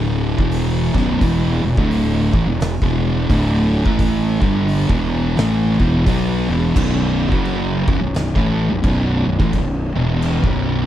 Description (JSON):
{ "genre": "stoner and doom metal", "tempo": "86 BPM", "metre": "4/4", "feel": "swing 61% on 8ths", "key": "B minor", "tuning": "A4 = 439 Hz", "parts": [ { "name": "thick fuzz guitar", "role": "riff", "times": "0.0-10.9 s", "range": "B1 to B3", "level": "-18 LUFS", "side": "equal", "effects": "distortion" }, { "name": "fuzz fingered electric bass", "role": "bass", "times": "0.0-10.9 s", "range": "B0 to B1", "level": "-21 LUFS", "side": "equal", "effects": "overdrive" }, { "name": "oversized low-tuned drum kit", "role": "drums", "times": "0.4-10.6 s", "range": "crash cymbal, hi-hat, kick drum, snare drum", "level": "-22 LUFS", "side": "equal", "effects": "none" } ], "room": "small room ambience", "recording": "none", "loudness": "-15 LUFS", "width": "side -12 dB against mid", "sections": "0.0-6.8 A section; 6.8-10.9 B section", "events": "none", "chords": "0.0 Bm; 1.2 E5; 6.8 B5", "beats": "0.52 | 1.21 1.91 2.60 3.29 | 3.98 4.68 5.37 6.06 | 6.76 7.45 8.14 8.84 | 9.53 10.22" }